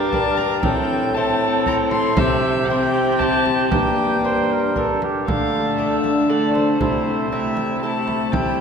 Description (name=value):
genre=classical, renaissance-style consort dance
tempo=117 BPM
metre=3/4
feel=straight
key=unclear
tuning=A4 = 440 Hz
part: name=dark violin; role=melody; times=0.0-8.6 s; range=C5 to C6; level=-24 LUFS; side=left 4 dB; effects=none
part: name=mellow cor anglais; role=second line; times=0.0-8.6 s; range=E4 to C5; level=-24 LUFS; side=right 4 dB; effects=none
part: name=lute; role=accompaniment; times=0.0-8.6 s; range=G2 to D5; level=-25 LUFS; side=left 2 dB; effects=none
part: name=rich viola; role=accompaniment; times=0.0-8.6 s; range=G3 to D4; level=-25 LUFS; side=left 3 dB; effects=none
part: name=warm bassoon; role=bass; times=0.0-8.6 s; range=G2 to D3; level=-23 LUFS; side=right 1 dB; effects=none
part: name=frame drum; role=percussion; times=0.1-8.6 s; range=none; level=-27 LUFS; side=right 2 dB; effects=none
room=wet church reverb, RT60 3.5 s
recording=none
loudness=-17 LUFS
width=side -6 dB against mid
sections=0.0-5.3 A section; 5.3-8.6 B section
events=none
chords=0.0 Gm; 0.6 Am; 2.2 C; 3.7 Gm; 5.3 Dm; 6.8 Am/C